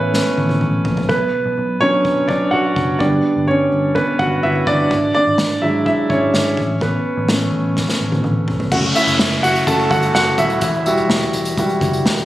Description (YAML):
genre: piano-driven pop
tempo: 126 BPM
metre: 4/4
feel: straight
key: unclear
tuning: A4 = 438 Hz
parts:
  - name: clear concert grand piano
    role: accompaniment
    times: 0.0-12.2 s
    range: F#3 to A5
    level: -16 LUFS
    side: equal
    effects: none
  - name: vintage muted picked electric bass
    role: bass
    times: 0.0-12.2 s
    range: D#1 to B1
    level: -22 LUFS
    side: equal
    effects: none
  - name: unplugged drum kit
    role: drums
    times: 0.1-12.2 s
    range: crash cymbal, hi-hat, kick drum, snare drum, toms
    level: -21 LUFS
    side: equal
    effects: none
  - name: downlifter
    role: sound effects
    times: 8.7-12.2 s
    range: none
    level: -24 LUFS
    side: equal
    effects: none
room: light reverb, studio reverb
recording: recorded on a phone in the room, compression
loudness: -14 LUFS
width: side -15 dB against mid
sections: 0.0-8.7 A section; 8.7-12.2 B section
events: grand piano solo 0.0-8.7, 8.7-12.2; drum fill 0.1-1.1, 7.8-8.7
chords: 0.0 Aadd9; 1.1 Bm; 3.0 G; 4.9 E7/G#; 6.6 Aadd9; 8.7 F#m; 10.6 Emadd9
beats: 0.14 0.62 | 1.10 1.57 2.05 2.52 | 3.00 3.48 3.96 4.43 | 4.91 5.38 5.86 6.34 | 6.81 7.29 7.77 8.24 | 8.72 9.20 9.67 10.15 | 10.63 11.10 11.58 12.06